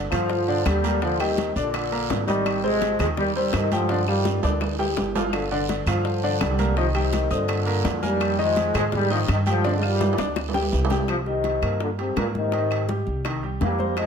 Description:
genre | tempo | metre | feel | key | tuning
latin, salsa | 167 BPM | 4/4 | straight | C minor | A4 = 441 Hz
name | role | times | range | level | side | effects
mellow trombone section | melody | 0.0-14.1 s | G2 to Bb3 | -25 LUFS | left 1 dB | plate reverb
bright grand piano | accompaniment | 0.0-14.1 s | C3 to Eb6 | -28 LUFS | equal | none
upright bass | bass | 0.0-14.1 s | G1 to Ab2 | -26 LUFS | equal | none
claves | percussion | 0.1-14.1 s | none | -37 LUFS | left 6 dB | none
congas | percussion | 0.1-14.1 s | none | -33 LUFS | left 3 dB | none
guiro | percussion | 0.1-11.1 s | none | -38 LUFS | right 7 dB | none
timbales | percussion | 0.1-14.1 s | none | -32 LUFS | right 6 dB | none
bongos | percussion | 0.3-14.1 s | none | -32 LUFS | left 7 dB | none
room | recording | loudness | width
moderate studio reverb, RT60 0.9 s | none | -21 LUFS | side -7 dB against mid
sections
0.0-11.1 A section; 11.1-14.1 B section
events
drum fill 3.9-5.3, 9.6-11.1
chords
0.0 G7(no3); 1.0 Ebmaj7; 2.5 Abmaj7; 3.9 G7(no3); 6.8 Cm7; 8.2 Fm7; 9.6 G5; 11.1 Cm7; 12.5 Abmaj9

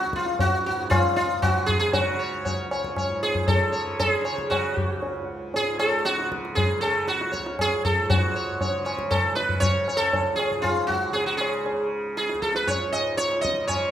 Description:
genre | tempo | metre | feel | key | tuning
indian classical, Hindustani | 117 BPM | 3/4 | straight | unclear | A4 = 440 Hz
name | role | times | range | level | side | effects
sitar | melody | 0.0-13.9 s | E#4 to D#5 | -24 LUFS | equal | none
tanpura | drone | 0.0-13.9 s | C#2 to C#3 | -34 LUFS | right 1 dB | none
tabla | percussion | 0.0-13.9 s | none | -27 LUFS | left 1 dB | none
room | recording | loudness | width
moderate recital hall reverb, RT60 1.8 s | minimal, uncompressed stereo recording | -22 LUFS | side -10 dB against mid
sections
0.0-8.1 A section; 8.1-13.9 B section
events
none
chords
none

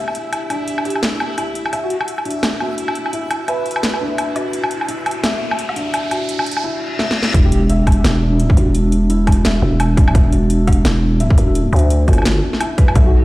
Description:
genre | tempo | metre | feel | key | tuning
half-time drum and bass | 171 BPM | 4/4 | swing 58% on 16ths, half-time | E minor | A4 = 440 Hz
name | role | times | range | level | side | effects
felt-muted upright piano | arpeggios | 0.0-13.2 s | D4 to E5 | -24 LUFS | left 1 dB | digital delay
backwards swelling texture | texture | 0.0-6.6 s | E4 to E5 | -31 LUFS | equal | built-in reverb
drum and bass drum kit | drums | 0.1-13.0 s | hi-hat, snare drum, woodblock | -21 LUFS | equal | none
riser, reverse cymbal and sub drop | sound effects | 4.4-8.7 s | none | -26 LUFS | equal | none
airy dreamy lead | melody | 1.8-4.0, 7.4-7.6, 13.1-13.2 s | F#4 to B4 | -27 LUFS | right 1 dB | chorus, dub echo
growling 808-style bass | bass | 7.3-13.2 s | E1 to D2 | -14 LUFS | equal | none
electronic kick drum | drums | 7.3-13.0 s | none | -12 LUFS | equal | overdrive
room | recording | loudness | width
light reverb | played on a big sound system in a bare room, stone room reverb | -14 LUFS | side -18 dB against mid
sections
0.0-7.3 A section; 7.3-13.2 B section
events
build-up 0.0-7.3; riser 4.4-6.6; reverse cymbal 6.6-7.3; drum fill 7.0-7.3; drop 7.3-13.2; impact 7.3-8.7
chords
0.0 Em; 1.7 Bm (rootless); 7.3 Esus2

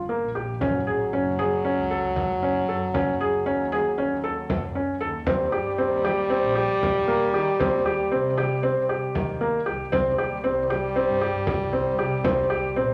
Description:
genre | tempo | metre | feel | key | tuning
contemporary instrumental, chamber music in an uneven meter | 232 BPM (eighths) | 9/8 | straight | unclear | A4 = 440 Hz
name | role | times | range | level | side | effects
rich double bass | bass | 0.0-12.9 s | Gb1 to Eb3 | -35 LUFS | equal | none
felt-muted upright piano | arpeggios | 0.1-12.9 s | Bb3 to A4 | -27 LUFS | equal | none
clear French horn | second line | 0.6-12.9 s | Gb3 to G3 | -29 LUFS | equal | none
frame drum | percussion | 0.6-12.5 s | none | -33 LUFS | equal | none
room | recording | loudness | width
wet recital hall reverb, RT60 1.4 s | none | -24 LUFS | mono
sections
0.6-12.9 A section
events
none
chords
0.0 N.C.; 0.6 Gbmadd9; 5.3 Eb6; 9.9 C5

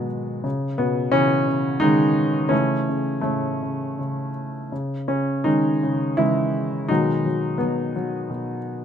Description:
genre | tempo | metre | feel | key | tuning
classical, lyrical solo piano | 84 BPM | 3/4 | uneven beats, rubato | C# minor | A4 = 435 Hz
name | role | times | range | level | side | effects
warm baby grand piano | solo | 0.0-8.8 s | G#2 to E4 | -20 LUFS | equal | none
room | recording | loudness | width
little or no reverb | close, detailed microphones | -20 LUFS | side -8 dB against mid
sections
0.0-8.8 A section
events
none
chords
0.4 C#m; 2.5 A; 4.7 C#m; 6.9 G#m7/B

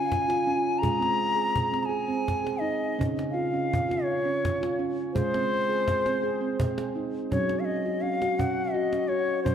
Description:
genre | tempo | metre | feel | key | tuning
world meditative, meditative tuned percussion | 56 BPM (dotted quarters) | 6/8 | straight | Gb lydian | A4 = 442 Hz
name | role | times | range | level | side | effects
bright reedy bansuri | melody | 0.0-9.5 s | C5 to Bb5 | -28 LUFS | left 2 dB | tape echo
handpan | arpeggios | 0.0-9.5 s | Db3 to Ab4 | -28 LUFS | right 2 dB | tape echo
cajon | percussion | 0.1-9.5 s | none | -31 LUFS | equal | none
room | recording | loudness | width
wet echo chamber reverb, RT60 2.0 s, studio reverb | dark, warm production | -24 LUFS | side -8 dB against mid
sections
0.0-7.3 A section; 7.3-9.5 B section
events
none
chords
0.0 Db; 0.8 Ab; 3.0 Db; 5.1 Ab; 7.3 Gb5

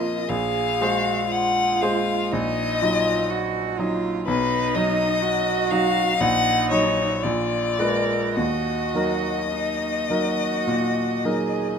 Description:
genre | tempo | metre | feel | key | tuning
classical, slow romantic movement for piano trio | 51-63 BPM | 4/4 | rubato | Eb minor from 4.3 s | A4 = 441 Hz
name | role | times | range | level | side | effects
rich violin | melody | 0.0-11.8 s | B4 to Gb5 | -24 LUFS | left 6 dB | none
rich cello | second line | 0.0-11.8 s | D#4 to Bb4 | -27 LUFS | right 9 dB | none
bright concert grand piano | accompaniment | 0.0-11.8 s | Bb1 to Eb5 | -24 LUFS | equal | none
room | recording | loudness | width
light reverb | none | -20 LUFS | side -7 dB against mid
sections
0.0-11.8 A section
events
none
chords
0.3 Fm/Bb; 2.3 Ebm/Bb; 4.3 B; 6.2 Ebm/Bb; 7.2 Bb7b9; 8.4 Ebm

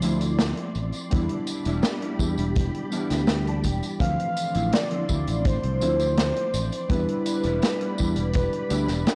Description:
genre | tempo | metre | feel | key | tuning
vaporwave | 83 BPM | 4/4 | straight | unclear | A4 = 440 Hz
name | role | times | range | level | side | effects
warbly lo-fi synth keys | accompaniment | 0.0-9.2 s | E3 to E4 | -32 LUFS | equal | lush chorus, tape echo
soft string machine | sustained chords | 0.0-9.2 s | D3 to C6 | -40 LUFS | equal | ensemble chorus
mellow electric guitar | riff | 0.0-9.2 s | F3 to A5 | -37 LUFS | equal | ensemble chorus, tape echo
fingered electric bass | bass | 0.0-9.0 s | E1 to E2 | -29 LUFS | equal | none
swinging big-band drum kit | drums | 0.0-9.2 s | hi-hat, snare drum, tambourine | -30 LUFS | equal | none
kick drum | drums | 1.1-8.5 s | none | -30 LUFS | equal | none
warm velvety synth lead | melody | 4.0-9.2 s | B4 to F5 | -30 LUFS | equal | chorus, tape echo
room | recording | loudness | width
light reverb, studio reverb | dry, gritty hardware recording, cassette tape | -25 LUFS | mono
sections
0.0-9.2 A section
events
clean electric guitar fill 2.6-4.0, 8.3-9.2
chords
0.0 Dm9; 1.1 Em7; 4.0 Dm9; 6.9 Em7

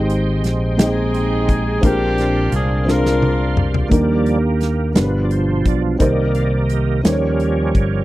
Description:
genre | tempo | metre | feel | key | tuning
slow gospel | 58 BPM (dotted quarters) | 6/8 | straight | Eb major | A4 = 440 Hz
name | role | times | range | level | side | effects
dark upright piano | accompaniment | 0.0-8.0 s | G2 to G5 | -21 LUFS | equal | none
bright tonewheel organ | sustained chords | 0.0-8.0 s | B2 to C6 | -22 LUFS | right 4 dB | fast rotary speaker, chorus vibrato
fingered electric bass | bass | 0.0-8.0 s | G1 to Eb2 | -19 LUFS | equal | none
natural country drum kit | drums | 0.1-7.9 s | hi-hat, kick drum, snare drum, toms | -17 LUFS | equal | none
warm horn section | melody | 0.8-3.9 s | C4 to Bb4 | -21 LUFS | left 1 dB | none
room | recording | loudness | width
little or no reverb | dry, close 1970s-style studio recording | -15 LUFS | side -16 dB against mid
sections
0.0-3.9 A section; 3.9-8.0 B section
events
drum fill 2.9-3.9; tonewheel organ solo 3.9-8.0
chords
0.0 Abmaj7; 1.8 Bb9; 3.9 Ebmaj7; 5.0 G7; 6.0 Cm7; 7.1 Eb7

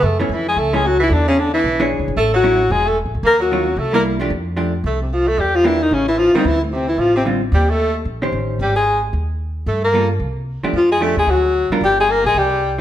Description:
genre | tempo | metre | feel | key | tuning
jazz | 224 BPM | 4/4 | swing 60% on 8ths | F major from 4.3 s | A4 = 439 Hz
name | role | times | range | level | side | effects
warm alto saxophone | melody | 0.0-12.8 s | A3 to Bb4 | -16 LUFS | left 2 dB | none
edgy tenor saxophone | second line | 0.0-12.8 s | A2 to Bb3 | -23 LUFS | right 4 dB | none
upright bass | bass | 0.0-12.8 s | E1 to G2 | -22 LUFS | equal | none
vintage hollow-body jazz guitar | accompaniment | 0.2-12.8 s | D3 to C#5 | -22 LUFS | right 1 dB | none
room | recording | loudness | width
moderate large studio reverb, RT60 1.3 s | none | -14 LUFS | side -12 dB against mid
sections
0.0-4.3 A section; 4.3-12.8 B section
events
none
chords
0.0 Gbm7; 1.1 E6; 2.2 A6; 3.2 Ebm9; 3.8 C7; 4.3 F69; 5.4 Em7b5; 5.9 Dm7; 7.5 Eb6; 8.6 Ab5; 9.7 Gm9; 10.2 Csus2; 10.7 F69; 11.3 D; 11.8 Gm

